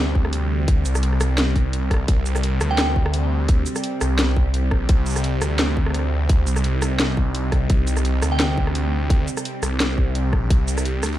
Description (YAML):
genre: half-time drum and bass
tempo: 171 BPM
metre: 4/4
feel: swing 55% on 16ths, half-time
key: C minor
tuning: A4 = 439 Hz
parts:
  - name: bowed-like drone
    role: sustained chords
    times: 0.0-11.2 s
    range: C3 to C5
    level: -28 LUFS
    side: right 2 dB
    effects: built-in reverb, sidechain pumping
  - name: phased detuned saw bass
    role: bass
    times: 0.0-11.2 s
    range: Bb1 to D2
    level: -21 LUFS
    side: equal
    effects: phaser
  - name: drum and bass drum kit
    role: drums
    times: 0.2-11.2 s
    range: hi-hat, rim click, shaker, snare drum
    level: -25 LUFS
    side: equal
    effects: small room ambience
  - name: electronic kick drum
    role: drums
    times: 0.2-10.6 s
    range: none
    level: -19 LUFS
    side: equal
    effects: small room ambience
  - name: glassy synth bell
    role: melody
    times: 2.7-3.2, 8.3-8.8 s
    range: G5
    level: -30 LUFS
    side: right 3 dB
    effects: chorus, phaser, tape echo
room: digital ambience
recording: dark, warm production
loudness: -18 LUFS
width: side -13 dB against mid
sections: 0.0-11.2 A section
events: none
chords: 0.0 C5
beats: 0.33 | 0.68 1.03 1.38 1.73 | 2.08 2.44 2.79 3.14 | 3.49 3.84 4.19 4.54 | 4.89 5.24 5.59 5.94 | 6.29 6.64 7.00 7.35 | 7.70 8.05 8.40 8.75 | 9.10 9.45 9.80 10.15 | 10.51 10.86